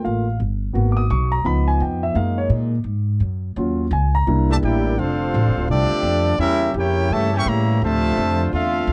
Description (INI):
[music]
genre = jazz, big band swing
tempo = 170 BPM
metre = 4/4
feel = swing 65% on 8ths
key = F major from 5.0 s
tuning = A4 = 442 Hz
[part]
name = warm grand piano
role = accompaniment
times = 0.0-4.9 s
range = F3 to Eb6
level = -24 LUFS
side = equal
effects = none
[part]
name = upright bass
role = bass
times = 0.1-8.9 s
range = D1 to Bb2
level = -22 LUFS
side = equal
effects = none
[part]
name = mellow trumpet section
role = melody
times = 4.5-8.9 s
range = C4 to C#6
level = -25 LUFS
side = equal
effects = none
[part]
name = bright trombone section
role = second line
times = 4.5-8.9 s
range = Bb2 to G4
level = -26 LUFS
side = equal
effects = none
[part]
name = clear trombone section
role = sustained chords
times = 5.0-8.9 s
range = C#3 to G4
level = -32 LUFS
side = equal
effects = none
[sound]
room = light reverb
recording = dark, warm production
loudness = -20 LUFS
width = mono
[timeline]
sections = 0.0-5.0 A section; 5.0-8.9 B section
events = grand piano solo 0.0-5.0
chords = 0.0 Gm9; 0.7 Abm7; 1.4 Db7; 2.2 Gb69; 3.6 Ebm7; 4.3 C13; 5.0 F69; 6.4 A7b9; 7.8 Dm9